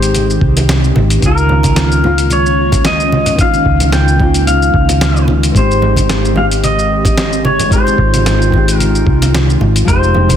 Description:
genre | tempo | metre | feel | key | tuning
sunset chillout | 111 BPM | 4/4 | swing 54% on 16ths | Ab major | A4 = 441 Hz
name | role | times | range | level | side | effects
pedal steel guitar | melody | 0.0-10.4 s | Bb4 to G5 | -16 LUFS | left 2 dB | ping-pong delay
nylon-string guitar | accompaniment | 0.0-10.4 s | Eb3 to G4 | -18 LUFS | moving between left 4 dB and right 3 dB | auto-pan, ping-pong delay
airy breathy pad | sustained chords | 0.0-10.4 s | Eb3 to G5 | -18 LUFS | equal | chorus
hollow-body short-scale fingered electric bass | bass | 0.0-10.4 s | F1 to Db2 | -14 LUFS | equal | none
dusty soul sampler-style drum kit | drums | 0.0-10.4 s | hi-hat, shaker, snare drum | -19 LUFS | equal | none
congas | percussion | 0.1-10.4 s | none | -20 LUFS | right 2 dB | none
electronic kick drum | drums | 0.4-10.4 s | none | -15 LUFS | equal | none
room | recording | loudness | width
light reverb, digital ambience | dense, heavily limited modern master | -9 LUFS | side -9 dB against mid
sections
0.0-10.4 A section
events
none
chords
0.0 Abmaj7; 1.2 Db69; 5.6 Abmaj7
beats
0.15 0.69 | 1.23 1.77 2.31 2.85 | 3.39 3.94 4.47 5.02 | 5.56 6.10 6.64 7.18 | 7.72 8.26 8.80 9.34 | 9.88

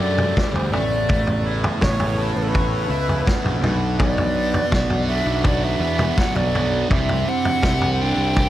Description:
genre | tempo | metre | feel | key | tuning
psychedelic rock | 82 BPM | 4/4 | straight | unclear | A4 = 440 Hz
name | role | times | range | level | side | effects
breathy hollow jazz flute | melody | 0.0-8.5 s | A4 to G5 | -25 LUFS | equal | slapback echo
combo organ | sustained chords | 0.0-8.5 s | C#3 to A4 | -30 LUFS | right 4 dB | spring reverb
fuzz guitar | riff | 0.0-8.5 s | B2 to C#5 | -24 LUFS | right 1 dB | distortion, phaser
fuzz picked electric bass | bass | 0.0-8.5 s | A1 to F#2 | -23 LUFS | equal | overdrive
vintage drum kit | drums | 0.2-8.5 s | kick drum, snare drum, toms | -22 LUFS | equal | none
room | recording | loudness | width
light reverb | none | -18 LUFS | side -13 dB against mid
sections
0.0-8.5 A section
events
none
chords
0.0 Dsus4; 0.7 Aadd9; 3.6 Bm; 6.9 Cadd9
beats
0.37 | 1.10 1.82 2.55 3.28 | 4.01 4.73 5.46 6.19 | 6.92 7.64 8.37

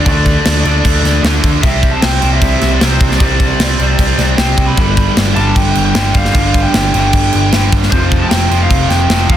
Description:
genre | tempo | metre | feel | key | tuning
hard rock | 153 BPM | 4/4 | straight | unclear | A4 = 440 Hz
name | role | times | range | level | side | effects
overdriven electric guitar | riff | 0.0-9.4 s | F2 to D4 | -16 LUFS | right 1 dB | none
lead guitar through a small cranked amp | melody | 0.1-9.4 s | C5 to B5 | -19 LUFS | equal | overdrive
overdriven picked electric bass | bass | 0.1-9.4 s | F1 to E2 | -15 LUFS | equal | none
tight metal drum kit | drums | 0.1-9.4 s | crash cymbal, kick drum, snare drum | -14 LUFS | equal | none
room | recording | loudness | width
light reverb, small room ambience | dense, heavily limited modern master | -9 LUFS | side -11 dB against mid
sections
0.0-9.4 A section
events
none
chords
0.0 D5; 1.6 C; 4.8 G5; 7.9 F5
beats
| 0.06 0.45 0.85 1.24 | 1.63 2.02 2.42 2.81 | 3.20 3.59 3.99 4.38 | 4.77 5.17 5.56 5.95 | 6.35 6.74 7.13 7.53 | 7.92 8.32 8.71 9.11

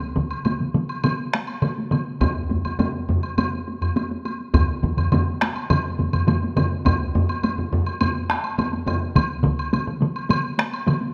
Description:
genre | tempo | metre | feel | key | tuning
japanese traditional, taiko drum ensemble | 104 BPM | 4/4 | straight | none | none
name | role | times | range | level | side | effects
taiko ensemble | percussion | 0.0-11.1 s | none | -29 LUFS | equal | none
taiko ensemble | percussion | 0.2-11.0 s | none | -26 LUFS | equal | none
taiko ensemble | percussion | 0.2-9.6 s | none | -27 LUFS | equal | none
woodblock | percussion | 0.3-11.0 s | none | -32 LUFS | equal | none
taiko ensemble | percussion | 2.2-9.0 s | none | -26 LUFS | equal | none
room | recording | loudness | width
moderate recital hall reverb, RT60 1.5 s | close, detailed microphones | -23 LUFS | mono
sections
0.0-11.1 A section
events
speeding up 0.0-11.1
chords
none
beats
0.45 1.04 1.62 | 2.21 2.79 3.38 3.96 | 4.54 5.12 5.70 6.28 | 6.86 7.44 8.01 8.59 | 9.16 9.73 10.31 10.88

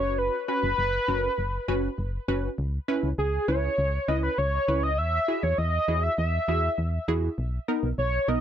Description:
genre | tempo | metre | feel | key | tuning
synth-pop | 100 BPM | 4/4 | straight | C# dorian | A4 = 440 Hz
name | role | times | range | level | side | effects
octave-doubled lead | melody | 0.0-8.4 s | G#4 to E5 | -26 LUFS | equal | chorus, ping-pong delay
funky polysynth comp | accompaniment | 0.0-8.4 s | B3 to B4 | -29 LUFS | right 1 dB | chorus
solid FM bass | bass | 0.0-8.4 s | F#1 to E2 | -28 LUFS | equal | none
room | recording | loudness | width
light reverb | none | -24 LUFS | side -9 dB against mid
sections
0.0-8.4 A section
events
none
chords
0.0 F#sus4; 2.6 C#m7; 5.0 Eadd9; 7.4 Bmaj7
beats
| 0.18 0.78 1.38 1.98 | 2.58 3.18 3.78 4.38 | 4.98 5.58 6.18 6.78 | 7.38 7.98

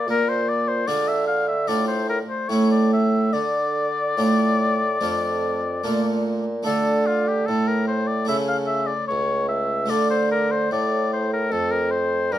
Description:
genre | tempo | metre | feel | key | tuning
classical, baroque-style sonata movement with continuo | 74 BPM | 4/4 | straight | D minor | A4 = 441 Hz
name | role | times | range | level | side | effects
warm oboe | melody | 0.0-12.4 s | F4 to F5 | -24 LUFS | left 3 dB | none
harpsichord | accompaniment | 0.0-12.4 s | C#2 to A4 | -24 LUFS | right 2 dB | none
warm bassoon | bass | 0.0-12.4 s | C#2 to D3 | -24 LUFS | right 1 dB | none
room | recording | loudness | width
light reverb | none | -19 LUFS | side -12 dB against mid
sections
0.0-6.7 A section; 6.7-12.4 B section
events
none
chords
0.1 Bb7; 1.7 Dm/A; 2.5 A; 3.3 Dm; 8.3 A/C#; 9.9 Dm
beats
| 0.07 0.88 1.68 2.50 | 3.33 4.17 5.01 5.83 | 6.66 7.47 8.29 9.09 | 9.90 10.71 11.52 12.33

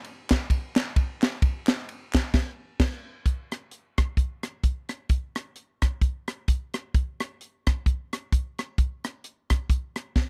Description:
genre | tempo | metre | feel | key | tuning
gospel | 130 BPM | 4/4 | swing 57% on 8ths | none | none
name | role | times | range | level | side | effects
crisp fusion drum kit | drums | 0.0-10.3 s | crash cymbal, hi-hat, kick drum, ride cymbal, rim click, snare drum | -25 LUFS | equal | none
group handclap | percussion | 0.3-2.2 s | none | -39 LUFS | equal | none
room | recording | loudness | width
small room ambience | dry, close 1970s-style studio recording | -27 LUFS | mono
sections
0.0-3.3 A section; 3.3-10.3 B section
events
band accent 2.3-3.3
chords
none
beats
0.05 0.51 0.96 | 1.42 1.88 2.34 2.80 | 3.26 3.72 4.18 4.64 | 5.10 5.56 6.02 6.48 | 6.94 7.40 7.86 8.32 | 8.78 9.24 9.70 10.16

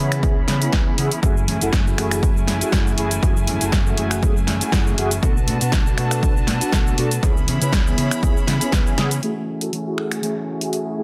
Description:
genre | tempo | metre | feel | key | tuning
filtered disco house | 120 BPM | 4/4 | swing 54% on 16ths | F# minor | A4 = 440 Hz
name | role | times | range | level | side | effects
mellow synth brass | accompaniment | 0.0-11.0 s | A3 to B4 | -29 LUFS | equal | chorus, phaser, sidechain pumping, low-pass filter
clear studio violin section | sustained chords | 0.0-11.0 s | A3 to B5 | -32 LUFS | equal | vintage 12-bit sampler grit, sidechain pumping, low-pass filter
mellow electric guitar | riff | 0.0-11.0 s | E3 to G#4 | -30 LUFS | equal | sidechain pumping, low-pass filter
hollow-body short-scale fingered electric bass | bass | 0.0-9.2 s | F#1 to C#3 | -26 LUFS | equal | tube saturation, sidechain pumping, low-pass filter
punchy analog drum machine | drums | 0.1-10.8 s | finger snaps, hi-hat, shaker, snare drum | -27 LUFS | equal | overdrive, sidechain pumping on hats, sidechain pumping on perc
electronic kick drum | drums | 0.2-8.8 s | none | -22 LUFS | equal | overdrive
room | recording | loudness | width
little or no reverb | dense, heavily limited modern master | -20 LUFS | mono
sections
0.0-9.2 A section; 9.2-11.0 B section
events
filter sweep 0.0-9.2, 9.2-11.0; drum fill 9.0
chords
0.0 C#m7; 1.2 F#m9; 5.2 Bm7; 7.2 C#m7; 9.2 F#m9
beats
0.23 0.73 | 1.23 1.73 2.23 2.73 | 3.23 3.73 4.23 4.73 | 5.23 5.73 6.23 6.73 | 7.23 7.73 8.23 8.73 | 9.23 9.73 10.23 10.73

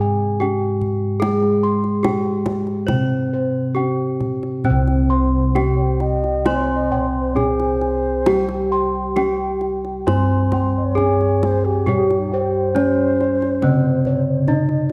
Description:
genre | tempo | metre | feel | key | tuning
Javanese gamelan | 68 BPM | 4/4 | uneven beats | C pelog | A4 = 440 Hz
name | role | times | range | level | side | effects
gamelan-type bronze metallophone | melody | 0.0-14.9 s | C4 to C5 | -24 LUFS | equal | none
gamelan-type bronze metallophone | accompaniment | 0.0-14.9 s | C3 to C4 | -26 LUFS | equal | none
gamelan-type bossed gongs | arpeggios | 0.0-14.9 s | C5 to C6 | -30 LUFS | equal | none
gamelan-type bossed gongs | bass | 0.0-14.9 s | C2 to Ab4-20c | -24 LUFS | equal | none
kendang | percussion | 0.4-14.9 s | none | -28 LUFS | equal | none
gamelan-type bronze metallophone | arpeggios | 4.6-14.9 s | C5 to C6 | -32 LUFS | equal | none
mellow xiao | second line | 5.8-14.4 s | Eb4-30c to Eb5-29c | -27 LUFS | equal | tape echo
room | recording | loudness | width
moderate scoring stage reverb, RT60 1.8 s | worn, warbling old tape, cassette tape, warbly pitch drift | -19 LUFS | mono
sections
0.0-4.6 A section; 4.6-14.9 B section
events
none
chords
none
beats
0.42 | 1.22 2.04 2.89 3.76 | 4.65 5.55 6.46 7.36 | 8.26 9.16 10.07 10.97 | 11.88 12.77 13.63 14.48

